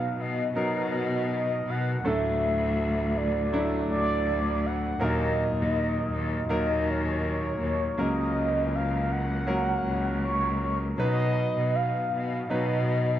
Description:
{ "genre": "pop ballad", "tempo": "81 BPM", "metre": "4/4", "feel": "straight", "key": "unclear", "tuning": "A4 = 440 Hz", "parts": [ { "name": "mellow horn-like synth lead", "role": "melody", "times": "0.0-13.2 s", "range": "C#5 to F#5", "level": "-30 LUFS", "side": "right 1 dB", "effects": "chorus, phaser" }, { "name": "clear concert grand piano", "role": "accompaniment", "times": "0.0-13.2 s", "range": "A2 to B4", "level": "-29 LUFS", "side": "equal", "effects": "none" }, { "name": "clear chamber cello section", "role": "bass", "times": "0.0-13.2 s", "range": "C#2 to B2", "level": "-29 LUFS", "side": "left 1 dB", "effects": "none" } ], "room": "light reverb, small room ambience", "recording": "none", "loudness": "-24 LUFS", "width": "side -12 dB against mid", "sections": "0.0-13.2 A section", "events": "none", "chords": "0.0 B; 2.0 D; 5.0 D#m; 8.0 F#/C#; 11.0 B", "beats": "0.56 1.30 | 2.04 2.78 3.52 4.26 | 5.00 5.75 6.49 7.23 | 7.98 8.72 9.47 10.23 | 10.99 11.74 12.49" }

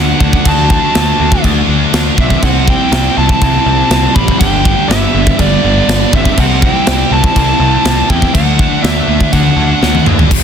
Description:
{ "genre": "heavy metal", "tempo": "122 BPM", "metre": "4/4", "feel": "straight", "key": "unclear", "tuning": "A4 = 440 Hz", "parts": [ { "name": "high-gain lead guitar", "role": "melody", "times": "0.0-10.0 s", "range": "D5 to B5", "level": "-16 LUFS", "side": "equal", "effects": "distortion" }, { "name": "smooth overdriven lead guitar", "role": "second line", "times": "0.0-10.0 s", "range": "A3 to G4", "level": "-22 LUFS", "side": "right 7 dB", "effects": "tape echo" }, { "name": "overdriven semi-hollow guitar", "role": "riff", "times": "0.0-10.4 s", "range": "E2 to D4", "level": "-20 LUFS", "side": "left 1 dB", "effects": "none" }, { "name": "scooped high-gain guitar", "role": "riff", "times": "0.0-10.4 s", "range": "E2 to D4", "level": "-18 LUFS", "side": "left 12 dB", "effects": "distortion" }, { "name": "scooped high-gain guitar", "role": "riff", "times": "0.0-10.3 s", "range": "G2 to D4", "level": "-19 LUFS", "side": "right 14 dB", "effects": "distortion" }, { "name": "fuzz picked electric bass", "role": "bass", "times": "0.0-10.4 s", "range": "E1 to E2", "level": "-15 LUFS", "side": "equal", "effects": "overdrive" }, { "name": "tight metal drum kit", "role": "drums", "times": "0.2-10.4 s", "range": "crash cymbal, kick drum, snare drum, toms", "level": "-13 LUFS", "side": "equal", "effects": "none" } ], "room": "studio ambience", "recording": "dense, heavily limited modern master", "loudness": "-8 LUFS", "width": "side -8 dB against mid", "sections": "0.0-10.3 A section", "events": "drum fill 9.8-10.3", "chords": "0.0 D; 2.4 C; 4.4 G; 6.4 C; 8.3 D", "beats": "| 0.45 0.94 1.44 1.93 | 2.42 2.92 3.41 3.91 | 4.40 4.89 5.39 5.88 | 6.38 6.87 7.36 7.85 | 8.35 8.84 9.33 9.82 | 10.31" }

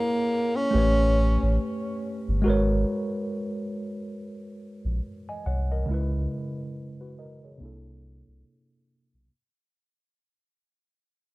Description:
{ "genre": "lo-fi hip hop", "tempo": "70 BPM", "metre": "4/4", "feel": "swing 58% on 16ths", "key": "G# minor", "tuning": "A4 = 441 Hz", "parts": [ { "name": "breathy tenor saxophone", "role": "melody", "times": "0.0-1.6 s", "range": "A#3 to C#4", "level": "-26 LUFS", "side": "equal", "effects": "analog delay" }, { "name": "mellow tine electric piano", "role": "accompaniment", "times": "0.0-9.3 s", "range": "C3 to G#5", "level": "-29 LUFS", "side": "equal", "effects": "medium stereo tremolo, cassette tape, low-pass filter" }, { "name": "sub bass with octave", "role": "bass", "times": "0.7-9.3 s", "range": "G1 to C#2", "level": "-24 LUFS", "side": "equal", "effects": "none" } ], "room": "light reverb", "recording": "none", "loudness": "-24 LUFS", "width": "side -20 dB against mid", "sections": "0.0-2.4 A section; 2.4-9.3 B section", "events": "fade-out 2.4-9.3; filter sweep on tine electric piano 2.4-9.3", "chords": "0.0 A#m7b5; 0.7 A9; 2.4 G#m11; 5.9 C#m7; 7.6 C13", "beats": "0.73 1.59 | 2.45 3.31 4.16 5.02 | 5.88 6.73 7.59 8.45" }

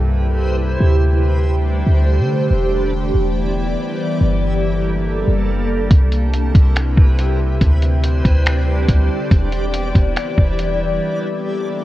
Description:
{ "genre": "hip hop, atmospheric cloud-rap", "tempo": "141 BPM", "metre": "4/4", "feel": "half-time", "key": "C major", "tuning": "A4 = 437 Hz", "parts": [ { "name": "ethereal airy pad", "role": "sustained chords", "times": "0.0-11.8 s", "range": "C3 to D5", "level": "-21 LUFS", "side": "equal", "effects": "ensemble chorus, built-in reverb, phaser, sidechain pumping" }, { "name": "clean 808-style bass", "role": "bass", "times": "0.0-11.0 s", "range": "E1 to D3", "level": "-16 LUFS", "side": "equal", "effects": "none" }, { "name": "backwards swelling texture", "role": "texture", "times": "0.0-11.8 s", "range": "G3 to D5", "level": "-28 LUFS", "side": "equal", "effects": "built-in reverb" }, { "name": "lo-fi sampler-style drum kit", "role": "drums", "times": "5.9-10.7 s", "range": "finger snaps, hi-hat, kick drum", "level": "-15 LUFS", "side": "equal", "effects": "none" } ], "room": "digital ambience", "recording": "worn, warbling old tape, cassette tape, warbly pitch drift", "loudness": "-14 LUFS", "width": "side -15 dB against mid", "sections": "0.0-11.8 A section", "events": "break 11.0-11.8", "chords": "0.0 Cmaj7; 0.8 D7sus4; 2.5 Em7; 4.2 Gmadd9; 5.9 Cmaj7; 7.6 D7sus4; 9.3 Em7; 11.0 Gmadd9", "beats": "0.38 | 0.80 1.23 1.65 2.08 | 2.50 2.93 3.36 3.78 | 4.21 4.63 5.06 5.48 | 5.91 6.33 6.76 7.19 | 7.61 8.04 8.46 8.89 | 9.31 9.74 10.16 10.59 | 11.02 11.44" }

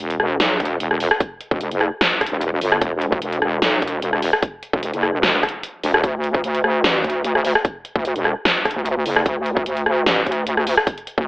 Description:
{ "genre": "heavy wobble dubstep", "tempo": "149 BPM", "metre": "4/4", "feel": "swing 53% on 16ths, half-time", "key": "E minor", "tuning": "A4 = 440 Hz", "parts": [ { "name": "wobble bass", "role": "bass", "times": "0.0-11.3 s", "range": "E1 to D2", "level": "-20 LUFS", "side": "equal", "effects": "chorus, overdrive" }, { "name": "big-room dance drum kit", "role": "drums", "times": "0.0-11.2 s", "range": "hi-hat, rim click, snare drum", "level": "-19 LUFS", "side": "equal", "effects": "none" }, { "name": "electronic kick drum", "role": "drums", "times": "0.6-11.3 s", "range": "none", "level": "-21 LUFS", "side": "equal", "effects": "none" } ], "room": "light reverb", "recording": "telephone sound", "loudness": "-17 LUFS", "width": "side -21 dB against mid", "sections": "0.0-11.3 A section", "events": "none", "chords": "none", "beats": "0.00 0.40 0.80 | 1.21 1.61 2.01 2.41 | 2.81 3.22 3.62 4.02 | 4.43 4.83 5.23 5.63 | 6.04 6.44 6.84 7.25 | 7.65 8.05 8.45 8.86 | 9.26 9.66 10.06 10.47 | 10.87 11.27" }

